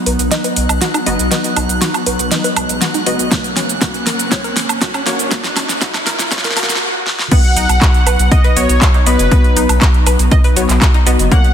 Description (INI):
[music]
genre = progressive house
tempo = 120 BPM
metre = 4/4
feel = straight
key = B major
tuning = A4 = 439 Hz
[part]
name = airy breathy pad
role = sustained chords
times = 0.0-11.5 s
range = F#3 to D#4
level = -22 LUFS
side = left 1 dB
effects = chorus, sidechain pumping
[part]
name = wide unison pluck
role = stabs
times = 0.0-11.5 s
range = A#3 to D#5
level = -22 LUFS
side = left 3 dB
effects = sidechain pumping, digital delay
[part]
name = riser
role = sound effects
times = 1.0-6.8 s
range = none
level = -26 LUFS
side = right 1 dB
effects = none
[part]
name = drifting glass-harmonics texture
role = texture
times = 0.0-6.8 s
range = F#6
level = -26 LUFS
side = right 2 dB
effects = chorus, built-in reverb, sidechain pumping
[part]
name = analog pluck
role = arpeggios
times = 0.1-11.4 s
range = A#3 to D#5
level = -22 LUFS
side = equal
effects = chorus, vintage 12-bit sampler grit, sidechain pumping, digital delay
[part]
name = saturated sub bass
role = bass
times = 0.1-11.3 s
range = F#1 to C#2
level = -17 LUFS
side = equal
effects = tube saturation, sidechain pumping
[part]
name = pop drum kit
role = drums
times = 0.1-11.5 s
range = crash cymbal, handclaps, hi-hat, shaker, snare drum, woodblock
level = -17 LUFS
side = right 1 dB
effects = none
[part]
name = electronic kick drum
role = drums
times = 3.3-11.4 s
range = none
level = -12 LUFS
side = equal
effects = none
[part]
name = soft supersaw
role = melody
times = 7.3-11.5 s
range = B4 to F#5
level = -19 LUFS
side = equal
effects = ping-pong delay
[part]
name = soft synth bell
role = second line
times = 7.3-11.5 s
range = B4 to F#5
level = -26 LUFS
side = left 1 dB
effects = none
[sound]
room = light reverb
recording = dense, heavily limited modern master, high-pass filter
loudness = -11 LUFS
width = side -9 dB against mid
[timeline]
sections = 0.0-7.3 A section; 7.3-11.5 B section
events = build-up 0.0-7.3; drum fill 0.0-6.8, 7.1; filter sweep on synth arpeggio sound 0.0-7.3; filter sweep 0.0-7.3; riser 1.0-6.8; stop 6.8-7.3; drop 7.3-11.5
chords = 0.0 B; 3.3 F#; 7.3 B